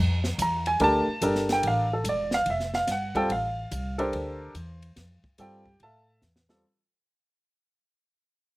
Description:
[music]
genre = modal jazz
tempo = 144 BPM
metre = 4/4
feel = swing 66% on 8ths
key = unclear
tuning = A4 = 443 Hz
[part]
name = upright bass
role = bass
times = 0.0-6.6 s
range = E1 to A2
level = -30 LUFS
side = equal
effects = none
[part]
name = compact cocktail drum kit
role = drums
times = 0.2-6.6 s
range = hi-hat, kick drum, ride cymbal, snare drum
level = -34 LUFS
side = equal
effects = none
[part]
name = warm grand piano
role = accompaniment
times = 0.4-6.6 s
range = G3 to Bb5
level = -25 LUFS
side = right 1 dB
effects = none
[sound]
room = little or no reverb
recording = recorded outdoors, with no room sound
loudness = -24 LUFS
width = side -20 dB against mid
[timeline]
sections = 0.0-6.6 A section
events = fade-out 0.0-6.6; drum fill 6.2-6.6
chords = 0.0 Dmadd9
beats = 0.38 0.80 1.21 | 1.63 2.05 2.46 2.88 | 3.30 3.71 4.13 4.55 | 4.96 5.38 5.80 6.21

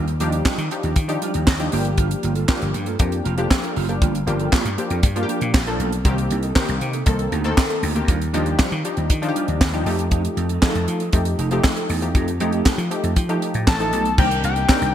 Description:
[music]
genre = early-eighties boogie funk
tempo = 118 BPM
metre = 4/4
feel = straight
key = G minor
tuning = A4 = 440 Hz
[part]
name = mellow electric guitar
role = riff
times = 0.0-14.9 s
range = Eb3 to A4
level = -29 LUFS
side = right 8 dB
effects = ensemble chorus
[part]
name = vintage slap bass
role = bass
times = 0.0-14.9 s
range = F1 to F3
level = -23 LUFS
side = equal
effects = none
[part]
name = tight funk drum kit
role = drums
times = 0.1-14.9 s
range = crash cymbal, handclaps, hi-hat, kick drum, snare drum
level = -20 LUFS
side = equal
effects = none
[part]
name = funky polysynth comp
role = accompaniment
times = 0.2-14.9 s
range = D3 to Bb4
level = -25 LUFS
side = left 2 dB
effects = chorus
[part]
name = fat analog lead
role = melody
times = 13.7-14.9 s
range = G5 to A5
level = -21 LUFS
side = left 4 dB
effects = none
[sound]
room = light reverb, small room ambience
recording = bright 1980s-style digital production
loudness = -18 LUFS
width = side -10 dB against mid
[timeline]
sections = 0.0-14.2 A section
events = none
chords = 0.0 Ebmaj9; 1.7 Gm7; 6.0 Cm7; 8.1 Ebmaj9; 9.9 F9; 14.2 Cm9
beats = 0.46 0.96 1.47 | 1.98 2.49 3.00 3.51 | 4.01 4.52 5.03 5.54 | 6.05 6.56 7.07 7.57 | 8.08 8.59 9.10 9.61 | 10.12 10.62 11.13 11.64 | 12.15 12.66 13.17 13.68 | 14.19 14.69

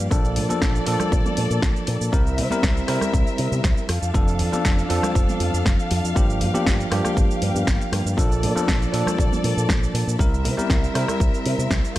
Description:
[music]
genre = nu-disco, nu disco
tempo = 119 BPM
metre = 4/4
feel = straight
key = C mixolydian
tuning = A4 = 440 Hz
[part]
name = bell-like tine electric piano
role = accompaniment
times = 0.0-12.0 s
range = F3 to Bb4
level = -25 LUFS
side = equal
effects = auto-pan, analog delay
[part]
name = dark symphonic string section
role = sustained chords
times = 0.0-12.0 s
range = Bb3 to F5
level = -29 LUFS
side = left 2 dB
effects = sidechain pumping
[part]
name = fingered electric bass with an envelope filter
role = bass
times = 0.0-12.0 s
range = F1 to C3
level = -24 LUFS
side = equal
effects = none
[part]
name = house drum kit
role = drums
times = 0.0-12.0 s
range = hi-hat, rim click, shaker, snare drum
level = -28 LUFS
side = equal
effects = none
[part]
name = electronic kick drum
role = drums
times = 0.1-11.8 s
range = none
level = -21 LUFS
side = equal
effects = none
[part]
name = congas and bongos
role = percussion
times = 0.5-11.7 s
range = none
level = -32 LUFS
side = right 3 dB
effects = none
[sound]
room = digital ambience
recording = none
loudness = -18 LUFS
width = side -15 dB against mid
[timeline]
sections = 0.0-12.0 A section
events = none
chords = 0.1 Bbmaj7; 2.1 C7; 3.9 F6; 6.2 Gm7; 8.2 Bbmaj7; 10.2 C7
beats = | 0.11 0.62 1.12 1.62 | 2.13 2.63 3.14 3.64 | 4.14 4.65 5.15 5.66 | 6.16 6.67 7.17 7.67 | 8.18 8.68 9.19 9.69 | 10.20 10.70 11.20 11.71

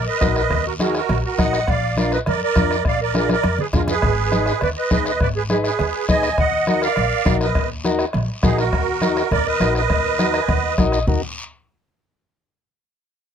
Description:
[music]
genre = latin, cumbia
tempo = 204 BPM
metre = 4/4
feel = straight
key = Eb harmonic minor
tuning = A4 = 442 Hz
[part]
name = musette accordion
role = melody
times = 0.0-10.7 s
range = Eb4 to Ab5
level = -22 LUFS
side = right 8 dB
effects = none
[part]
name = breathy clarinet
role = second line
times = 0.0-10.7 s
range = Eb4 to Eb5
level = -26 LUFS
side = left 4 dB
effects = none
[part]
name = upright bass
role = bass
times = 0.0-11.2 s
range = Ab1 to F2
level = -25 LUFS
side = equal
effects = none
[part]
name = combo organ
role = accompaniment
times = 0.2-11.2 s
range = D4 to Bb5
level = -22 LUFS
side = left 3 dB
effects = none
[part]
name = bombo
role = percussion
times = 0.2-11.1 s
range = none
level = -23 LUFS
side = left 1 dB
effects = none
[part]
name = congas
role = percussion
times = 0.2-11.1 s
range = none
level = -24 LUFS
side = equal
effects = none
[part]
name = guiro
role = percussion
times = 0.2-11.1 s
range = none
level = -34 LUFS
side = left 3 dB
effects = none
[sound]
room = light reverb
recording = close, detailed microphones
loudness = -17 LUFS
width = side -8 dB against mid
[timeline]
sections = 0.0-8.7 A section; 8.7-11.1 B section; 11.1-12.3 C section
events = drum fill 3.3-4.0; transistor combo organ fill 10.2-11.1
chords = 0.0 Ebm; 1.7 Bb7; 4.0 Abm; 6.4 Ebm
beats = 0.22 | 0.51 0.80 1.10 1.39 | 1.68 1.98 2.27 2.56 | 2.86 3.15 3.44 3.74 | 4.03 4.33 4.62 4.91 | 5.21 5.50 5.79 6.09 | 6.38 6.67 6.97 7.26 | 7.56 7.85 8.14 8.44 | 8.73 9.02 9.32 9.61 | 9.90 10.20 10.49 10.79 | 11.08

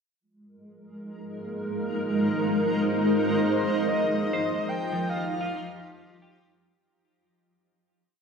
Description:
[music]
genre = ambient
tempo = 73 BPM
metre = 4/4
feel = straight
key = F minor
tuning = A4 = 442 Hz
[part]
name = granular cloud pad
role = sustained chords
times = 1.1-6.8 s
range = F3 to Eb5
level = -25 LUFS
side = equal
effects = built-in reverb
[part]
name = analog drone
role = drone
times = 1.0-6.9 s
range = F3 to F4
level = -40 LUFS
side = right 1 dB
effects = none
[part]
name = breathy flute-like synth lead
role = melody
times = 3.5-6.3 s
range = C5 to G5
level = -29 LUFS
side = left 2 dB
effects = tremolo, lush chorus, ping-pong delay
[part]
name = clean electric guitar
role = arpeggios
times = 4.3-8.2 s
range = F3 to C5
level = -35 LUFS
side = equal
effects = analog chorus, ping-pong delay
[sound]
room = wet plate reverb, RT60 2.9 s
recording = dreamy mix soaked in reverb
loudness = -24 LUFS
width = side -5 dB against mid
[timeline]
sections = 0.2-6.8 A section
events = filter sweep on ambient pad 0.2-6.8; fade-out 3.5-6.8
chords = 0.2 Abadd9; 3.5 F5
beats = | 0.20 1.02 1.84 2.67 | 3.49 4.31 5.13 5.95

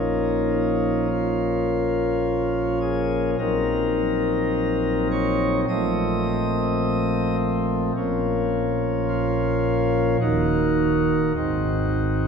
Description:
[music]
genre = classical, chorale-style piece for pipe organ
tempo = 52 BPM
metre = 4/4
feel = rubato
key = Bb minor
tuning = A4 = 440 Hz
[part]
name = pipe organ, sparkling flutes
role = solo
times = 0.0-12.3 s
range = Eb1 to Eb5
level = -20 LUFS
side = equal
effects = none
[sound]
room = wet church reverb, RT60 3.3 s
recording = minimal, uncompressed stereo recording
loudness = -20 LUFS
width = side -6 dB against mid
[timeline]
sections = 0.0-12.3 A section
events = none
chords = 0.0 Bbm; 3.4 Cm7b5/Bb; 5.7 F7/Bb; 8.0 Bbm; 10.2 Ebm; 11.4 Ab7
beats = 1.12 2.26 | 3.40 4.55 5.69 6.83 | 7.96 9.08 10.20 11.35

